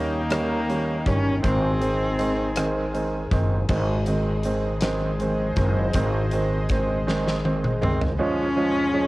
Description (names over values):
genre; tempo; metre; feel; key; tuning
six-eight pop ballad; 53 BPM (dotted quarters); 6/8; straight; unclear; A4 = 443 Hz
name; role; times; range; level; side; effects
warm cello; melody; 0.0-2.9, 7.8-9.1 s; Bb3 to Db4; -26 LUFS; left 1 dB; cassette tape
warm grand piano; accompaniment; 0.0-9.1 s; Eb3 to Db4; -26 LUFS; right 2 dB; cassette tape
chorused pulse-width pad; sustained chords; 0.0-9.1 s; Ab3 to Ab5; -30 LUFS; left 1 dB; cassette tape
upright bass; bass; 0.0-8.2 s; Gb1 to Eb2; -26 LUFS; equal; none
huge arena drum kit; drums; 0.3-8.2 s; crash cymbal, hi-hat, kick drum, rim click, snare drum, toms; -29 LUFS; equal; cassette tape
room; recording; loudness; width
light reverb; home recording on cassette; -21 LUFS; side -19 dB against mid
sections
0.0-3.7 A section; 3.7-8.2 B section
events
drum fill 7.1-8.2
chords
0.0 Eb7; 1.4 Ab; 8.2 Db